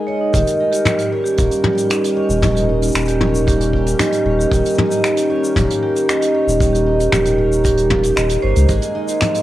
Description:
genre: folktronica.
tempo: 115 BPM.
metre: 4/4.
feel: straight.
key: unclear.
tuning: A4 = 440 Hz.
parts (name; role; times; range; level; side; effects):
vibraphone with medium mallets; second line; 0.0-9.4 s; Ab3 to Ab5; -19 LUFS; right 2 dB; analog delay.
warbly tape-like pad; sustained chords; 0.0-9.4 s; G3 to Bb4; -22 LUFS; left 1 dB; chorus, built-in reverb.
picked twelve-string acoustic guitar; arpeggios; 0.0-9.4 s; Eb3 to Eb5; -22 LUFS; right 1 dB; tape echo.
warm sub bass; bass; 0.3-8.8 s; Eb1 to Db2; -19 LUFS; equal; none.
kick drum; drums; 0.3-8.8 s; none; -21 LUFS; equal; none.
soft brush drum kit; drums; 0.3-9.4 s; finger snaps, hi-hat, shaker, toms; -21 LUFS; left 1 dB; low-pass filter on hats, low-pass filter on toms, low-pass filter on snare, low-pass filter on perc, low-pass filter on room.
room: light reverb, small room reverb.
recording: home recording on cassette.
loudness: -14 LUFS.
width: side -14 dB against mid.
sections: 0.3-9.4 A section.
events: none.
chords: 0.3 Eb7; 8.7 Absus2.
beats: | 0.34 0.86 1.39 1.91 | 2.43 2.95 3.47 3.99 | 4.51 5.04 5.56 6.08 | 6.60 7.12 7.65 8.17 | 8.69 9.21.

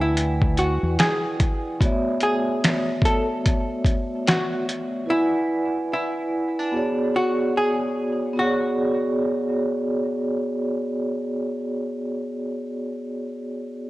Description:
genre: lo-fi hip hop.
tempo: 73 BPM.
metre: 4/4.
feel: swing 62% on 16ths.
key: B dorian.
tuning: A4 = 440 Hz.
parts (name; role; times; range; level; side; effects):
archtop guitar, miked and amplified; melody; 0.0-10.8 s; D4 to A4; -25 LUFS; equal; none.
vibraphone with soft mallets; accompaniment; 0.0-13.9 s; A3 to G#5; -24 LUFS; equal; none.
deep dub fingered electric bass; bass; 0.0-1.0 s; D2 to E2; -23 LUFS; equal; none.
dusty soul sampler-style drum kit; drums; 0.2-4.9 s; finger snaps, hi-hat, kick drum, snare drum; -21 LUFS; equal; overdrive, vintage 12-bit sampler grit.
room: light reverb, digital ambience.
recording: worn, warbling old tape, cassette tape, warbly pitch drift.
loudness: -21 LUFS.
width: side -17 dB against mid.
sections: 0.0-8.4 A section; 8.4-11.7 B section.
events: none.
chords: 0.0 E7; 1.8 Bm11; 5.1 E7; 6.7 Bm69.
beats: 0.16 0.98 | 1.80 2.62 3.44 4.27 | 5.09 5.91 6.73 7.55 | 8.38 9.20 10.02 10.84.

